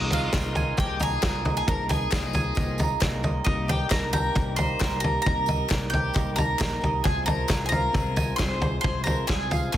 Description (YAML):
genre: indie folk with a building arrangement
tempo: 134 BPM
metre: 4/4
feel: straight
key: unclear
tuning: A4 = 439 Hz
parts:
  - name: bowl-back mandolin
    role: melody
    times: 0.0-9.8 s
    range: Eb5 to C6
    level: -30 LUFS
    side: left 1 dB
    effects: none
  - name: clear fiddle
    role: second line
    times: 0.0-9.8 s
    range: Eb4 to C5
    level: -35 LUFS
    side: left 3 dB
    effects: none
  - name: fingerpicked steel-string acoustic guitar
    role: accompaniment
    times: 0.0-1.7 s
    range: none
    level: barely audible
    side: none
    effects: none
  - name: picked acoustic archtop guitar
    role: accompaniment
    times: 0.0-9.8 s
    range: C3 to Ab4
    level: -37 LUFS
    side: left 7 dB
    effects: none
  - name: warm grand piano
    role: accompaniment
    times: 0.0-9.8 s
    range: C2 to Eb5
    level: -39 LUFS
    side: right 5 dB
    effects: none
  - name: hand-pumped harmonium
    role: sustained chords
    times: 0.0-9.8 s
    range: C3 to G4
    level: -42 LUFS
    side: left 1 dB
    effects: none
  - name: mandolin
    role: arpeggios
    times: 0.0-9.8 s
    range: Ab4 to Bb5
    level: -33 LUFS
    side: right 6 dB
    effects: none
  - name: fingered electric bass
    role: bass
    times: 0.0-9.8 s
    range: Bb1 to C2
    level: -31 LUFS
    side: equal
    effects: none
  - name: loose indie drum kit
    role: drums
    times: 0.1-9.8 s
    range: kick drum, snare drum, toms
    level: -26 LUFS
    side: equal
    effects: soft clipping on kick
  - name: tambourine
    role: percussion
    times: 0.1-9.8 s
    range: none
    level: -43 LUFS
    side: right 9 dB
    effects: none
  - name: group handclap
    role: percussion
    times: 0.3-9.4 s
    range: none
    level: -36 LUFS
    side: left 12 dB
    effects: none
room: small room ambience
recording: dense, heavily limited modern master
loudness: -22 LUFS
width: side -12 dB against mid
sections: 0.0-9.8 A section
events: none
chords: 0.0 Bb7sus4/C; 3.5 Eb/C; 7.0 Fm/C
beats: 0.34 0.79 1.24 | 1.68 2.13 2.57 3.02 | 3.47 3.91 4.36 4.81 | 5.25 5.70 6.15 6.60 | 7.05 7.50 7.95 8.39 | 8.84 9.29 9.74